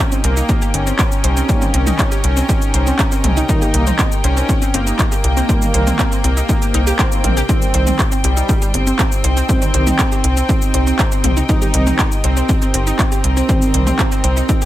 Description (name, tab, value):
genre	melodic techno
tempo	120 BPM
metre	4/4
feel	straight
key	C phrygian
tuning	A4 = 441 Hz
part	soft supersaw	melody	0.0-14.7 s	G3 to Eb4	-22 LUFS	equal	dub echo
part	dark studio string section	sustained chords	0.0-14.7 s	Eb4 to G5	-25 LUFS	left 2 dB	sidechain pumping
part	analog pluck	arpeggios	0.0-14.7 s	C4 to C5	-25 LUFS	equal	chorus, sidechain pumping, dub echo
part	techno drum kit	drums	0.1-14.7 s	handclaps, hi-hat, shaker, toms	-21 LUFS	equal	none
part	tight sequencer bass	bass	0.2-14.4 s	G1 to C2	-16 LUFS	equal	sidechain pumping
part	electronic kick drum	drums	0.5-14.6 s	none	-17 LUFS	equal	none
part	brassy analog pad	stabs	1.5-13.8 s	Eb3 to C4	-25 LUFS	right 1 dB	chorus, sidechain pumping, dub echo
part	swell	sound effects	6.7-7.5 s	none	-28 LUFS	left 4 dB	none
room	light reverb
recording	none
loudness	-13 LUFS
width	side -14 dB against mid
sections	0.0-14.7 A section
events	swell 6.7-7.5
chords	0.0 Cm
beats	0.49 0.99 | 1.49 1.99 2.49 2.99 | 3.49 3.99 4.49 4.99 | 5.49 5.99 6.49 6.99 | 7.49 7.99 8.49 8.99 | 9.49 9.99 10.49 10.99 | 11.49 11.99 12.49 12.99 | 13.49 13.99 14.49